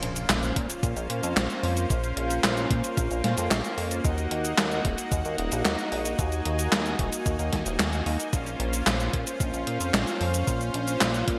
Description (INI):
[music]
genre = synthwave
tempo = 112 BPM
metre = 4/4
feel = straight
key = Bb minor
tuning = A4 = 440 Hz
[part]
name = soft supersaw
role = sustained chords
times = 0.0-11.4 s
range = Bb3 to Ab5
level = -32 LUFS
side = equal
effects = sidechain pumping
[part]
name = chorused synth bass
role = bass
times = 0.0-11.4 s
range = Eb1 to Bb2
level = -32 LUFS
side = equal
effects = none
[part]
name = gated 80s digital drum machine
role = drums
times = 0.0-11.4 s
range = cabasa, handclaps, hi-hat, snare drum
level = -30 LUFS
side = equal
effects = gated reverb, gated reverb snare, overdrive
[part]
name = impact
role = sound effects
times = 0.0-1.9 s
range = none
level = -44 LUFS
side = equal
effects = none
[part]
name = electronic kick drum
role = drums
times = 0.6-11.4 s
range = none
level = -31 LUFS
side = equal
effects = overdrive
[sound]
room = moderate lush hall reverb, RT60 1.9 s, digital ambience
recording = bright 1980s-style digital production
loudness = -27 LUFS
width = mono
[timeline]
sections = 0.0-11.4 A section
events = impact 0.0-1.9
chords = 0.0 Bbmadd9; 4.0 Ebm; 8.3 Bbmadd9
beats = 0.29 0.83 1.37 | 1.90 2.44 2.97 3.51 | 4.04 4.58 5.12 5.65 | 6.19 6.72 7.26 7.79 | 8.33 8.87 9.40 9.94 | 10.47 11.01